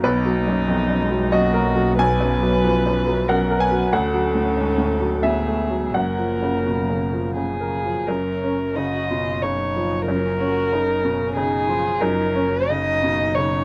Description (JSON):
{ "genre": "neoclassical piano and strings", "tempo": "83-95 BPM", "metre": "3/4", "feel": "rubato", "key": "F# major", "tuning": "A4 = 440 Hz", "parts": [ { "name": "muted violin", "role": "melody", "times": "0.0-13.6 s", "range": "D#4 to D#5", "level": "-26 LUFS", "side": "equal", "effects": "none" }, { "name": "muted cello", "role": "second line", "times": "0.0-13.6 s", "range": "G#3 to F#4", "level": "-31 LUFS", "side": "equal", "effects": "none" }, { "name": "bright upright piano", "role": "accompaniment", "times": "0.0-13.6 s", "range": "B1 to G#5", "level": "-24 LUFS", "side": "equal", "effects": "none" }, { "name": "muted double bass", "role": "bass", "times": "0.0-13.6 s", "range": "F#1 to D2", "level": "-28 LUFS", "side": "equal", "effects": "none" } ], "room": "light reverb", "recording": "none", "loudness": "-21 LUFS", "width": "mono", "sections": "0.0-8.1 A section; 8.1-13.6 B section", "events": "none", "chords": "0.0 Bmaj7; 3.9 Dmaj7; 5.9 F#maj7", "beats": "| 0.04 0.68 1.32 | 1.99 2.63 3.28 | 3.92 4.56 5.23 | 5.94 6.66 7.37 | 8.08 8.78 9.43 | 10.08 10.72 11.36 | 12.01 12.69 13.36" }